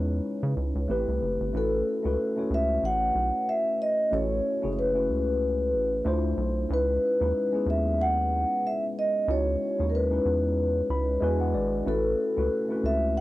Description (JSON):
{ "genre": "R&B, neo-soul", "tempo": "93 BPM", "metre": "4/4", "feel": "swing 58% on 16ths", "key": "unclear", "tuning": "A4 = 440 Hz", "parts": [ { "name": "vibraphone with soft mallets", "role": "melody", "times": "0.0-13.2 s", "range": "A4 to F#5", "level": "-26 LUFS", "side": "equal", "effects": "cassette tape" }, { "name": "mellow tine electric piano", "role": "accompaniment", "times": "0.0-13.2 s", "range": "G#3 to B5", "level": "-29 LUFS", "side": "left 1 dB", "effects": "phaser, cassette tape" }, { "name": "rubbery square bass", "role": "bass", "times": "0.0-13.2 s", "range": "F#1 to C#3", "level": "-29 LUFS", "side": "equal", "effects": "transformer saturation" } ], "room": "light reverb", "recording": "home recording on cassette", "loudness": "-24 LUFS", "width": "side -16 dB against mid", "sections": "0.0-1.5 A section; 1.5-13.2 B section", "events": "tine electric piano fill 10.6-11.9", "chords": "0.0 C#m9; 0.9 Am7; 1.5 A69; 6.0 Dm9; 6.7 C#m9; 11.2 E9; 11.9 A69" }